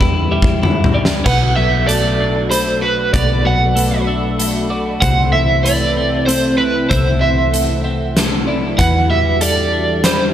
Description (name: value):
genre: post-rock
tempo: 96 BPM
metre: 3/4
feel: straight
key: unclear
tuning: A4 = 441 Hz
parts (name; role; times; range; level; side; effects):
- overdriven semi-hollow guitar; melody; 0.0-10.3 s; B4 to G5; -18 LUFS; right 2 dB; tremolo, tape echo
- warm analog pad; sustained chords; 0.0-10.3 s; B2 to B5; -25 LUFS; left 1 dB; chorus
- twelve-string electric guitar; arpeggios; 0.0-10.3 s; B2 to B4; -21 LUFS; left 4 dB; tape echo
- twelve-string electric guitar; arpeggios; 0.0-10.3 s; C4 to B5; -24 LUFS; right 3 dB; ensemble chorus, tape echo
- hollow-body short-scale fingered electric bass; bass; 0.0-10.3 s; B1 to E2; -19 LUFS; equal; none
- huge arena drum kit; drums; 0.0-10.2 s; crash cymbal, hi-hat, kick drum, snare drum, toms; -19 LUFS; equal; none
room: light reverb, studio reverb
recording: none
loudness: -13 LUFS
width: side -10 dB against mid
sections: 0.0-1.3 A section; 1.3-10.3 B section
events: drum fill 0.0-1.3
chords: 0.0 Em7; 1.3 Bm7; 5.0 Am/C; 8.8 Em7